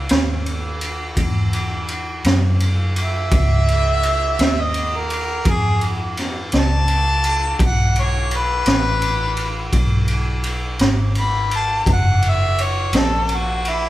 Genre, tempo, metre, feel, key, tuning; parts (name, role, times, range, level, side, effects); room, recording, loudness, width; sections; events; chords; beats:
slow blues; 56 BPM (dotted quarters); 12/8; straight; A4 = 439 Hz
vintage muted fingered electric bass; bass; 0.0-13.9 s; F#1 to F#2; -20 LUFS; equal
raw garage drum kit; drums; 0.1-13.8 s; kick drum, ride cymbal, snare drum; -20 LUFS; equal
warm harmonica; melody; 3.0-13.9 s; E4 to B5; -20 LUFS; equal; overdrive
moderate large studio reverb, RT60 1.1 s; band playing live in one room; -16 LUFS; side -15 dB against mid
0.0-13.9 A section
harmonica solo 0.0-13.9
0.0 F#7(no3); 3.3 C#; 7.6 G#m; 11.9 F#7
0.11 1.19 2.26 | 3.33 4.40 5.47 6.54 | 7.61 8.68 9.74 10.81 | 11.88 12.95